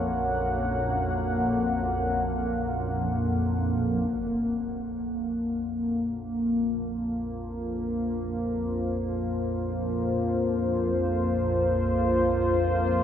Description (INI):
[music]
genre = dark ambient drone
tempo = free time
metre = none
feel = none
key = Bb minor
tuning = A4 = 440 Hz
[part]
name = deep dark ambient pad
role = sustained chords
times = 0.0-13.0 s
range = Bb3 to Gb5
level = -26 LUFS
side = left 1 dB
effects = chorus, built-in reverb
[part]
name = organ-like drone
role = drone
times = 0.0-13.0 s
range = Bb1 to F2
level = -30 LUFS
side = equal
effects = ensemble chorus, built-in reverb, phaser
[part]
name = impact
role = percussion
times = 4.1-4.3 s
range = none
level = -46 LUFS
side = equal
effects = low-pass filter on sfx
[sound]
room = wet huge ambient reverb, RT60 7.8 s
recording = none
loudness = -25 LUFS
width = side -9 dB against mid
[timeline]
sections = 0.0-4.1 A section; 4.1-13.0 A section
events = fade-in on synth drone 4.1-13.0; fade-in on impacts and reversed cymbals 4.1-13.0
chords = 0.0 Gb/Bb; 4.1 Bb5